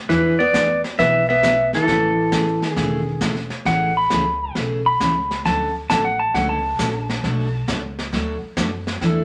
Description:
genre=country, western swing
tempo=134 BPM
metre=4/4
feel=swing 68% on 8ths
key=A major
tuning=A4 = 442 Hz
part: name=upright bass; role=bass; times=0.0-9.2 s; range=E1 to F#2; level=-31 LUFS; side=equal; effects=none
part: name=pedal steel guitar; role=melody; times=0.1-3.2 s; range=A4 to E5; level=-21 LUFS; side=equal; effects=none
part: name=archtop guitar, miked and amplified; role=second line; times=0.1-3.2 s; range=E3 to B3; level=-24 LUFS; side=equal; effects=none
part: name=picked steel-string acoustic guitar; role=accompaniment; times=0.1-9.2 s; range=B2 to A4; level=-27 LUFS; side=equal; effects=none
part: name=jazz brush drum kit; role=drums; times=0.1-9.2 s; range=brushed snare drum, hi-hat, kick drum, snare drum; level=-29 LUFS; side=equal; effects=none
part: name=clean lap steel guitar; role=second line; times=3.7-7.8 s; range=F#5 to B5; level=-22 LUFS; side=equal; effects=none
room=wet studio reverb, RT60 0.6 s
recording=none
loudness=-20 LUFS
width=mono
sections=0.0-3.7 A section; 3.7-9.2 B section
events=electric slide guitar solo 3.7-9.2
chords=0.1 E7; 1.9 Amaj7; 5.5 Dmaj7; 7.2 Bm7

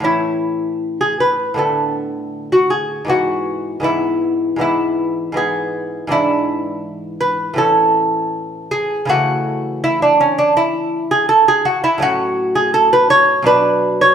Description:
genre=classical, baroque-style dance for lute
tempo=80 BPM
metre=4/4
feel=rubato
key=A major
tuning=A4 = 440 Hz
part: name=lute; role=solo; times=0.0-14.1 s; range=G#2 to C#5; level=-14 LUFS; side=equal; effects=none
room=moderate stone room reverb, RT60 1.3 s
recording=band playing live in one room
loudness=-14 LUFS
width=side -8 dB against mid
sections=0.1-14.1 A section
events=none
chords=0.1 A; 1.6 Bm7/A; 3.1 E/G#; 6.1 E7/G#; 7.6 A; 9.1 A/C#; 12.0 F#m/A; 13.5 Bm

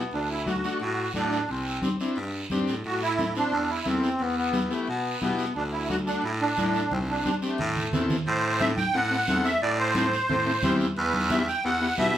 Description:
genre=latin, cumbia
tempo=177 BPM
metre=4/4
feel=straight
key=A dorian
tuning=A4 = 440 Hz
part: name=musette accordion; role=melody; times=0.0-12.2 s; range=A3 to G5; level=-27 LUFS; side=right 1 dB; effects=none
part: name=combo organ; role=accompaniment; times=0.0-12.2 s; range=A3 to C5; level=-29 LUFS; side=left 2 dB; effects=none
part: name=growling baritone saxophone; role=bass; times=0.0-12.2 s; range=C2 to B2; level=-30 LUFS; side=right 1 dB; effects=none
part: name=congas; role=percussion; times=0.1-12.2 s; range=none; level=-32 LUFS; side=equal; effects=none
part: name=guiro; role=percussion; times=0.1-12.2 s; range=none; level=-37 LUFS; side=right 4 dB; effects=none
room=wet studio reverb, RT60 0.5 s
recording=band playing live in one room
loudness=-23 LUFS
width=side -11 dB against mid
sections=0.0-8.3 A section; 8.3-12.2 B section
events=drum fill 6.9-8.3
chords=0.1 D; 1.5 Csus2; 2.8 Am; 4.2 Em; 5.6 D; 6.9 Csus2; 7.6 Am; 11.0 Em

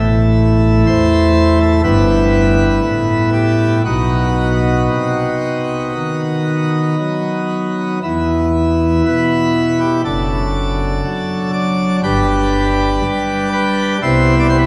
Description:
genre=classical, chorale-style piece for pipe organ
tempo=57-62 BPM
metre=4/4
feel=rubato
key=E minor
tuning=A4 = 439 Hz
part: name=pipe organ, plenum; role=solo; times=0.0-14.7 s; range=F#1 to D5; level=-15 LUFS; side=equal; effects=none
room=wet church reverb, RT60 3.6 s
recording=vinyl crackle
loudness=-15 LUFS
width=mono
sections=0.0-14.7 A section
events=none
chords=0.0 A5; 1.8 Em/G; 3.9 B; 8.0 E5; 10.1 D/F#; 12.0 G; 14.0 Cmaj7

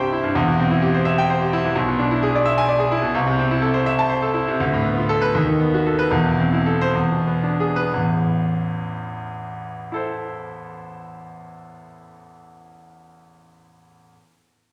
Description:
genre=classical, virtuoso piano study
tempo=60-87 BPM (dotted quarters)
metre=6/8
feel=rubato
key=A minor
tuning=A4 = 440 Hz
part: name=clear concert grand piano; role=solo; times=0.0-14.1 s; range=E1 to A5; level=-21 LUFS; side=equal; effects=none
room=wet recital hall reverb, RT60 1.6 s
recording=none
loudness=-20 LUFS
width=mono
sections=0.0-7.9 A section; 7.9-11.9 B section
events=slowing down 3.9-7.9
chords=0.4 C/E; 1.8 E7/B; 3.2 Am/C; 4.6 Bm7b5/D; 5.3 B7/D#; 6.1 Am/E; 7.0 E7; 7.9 Am

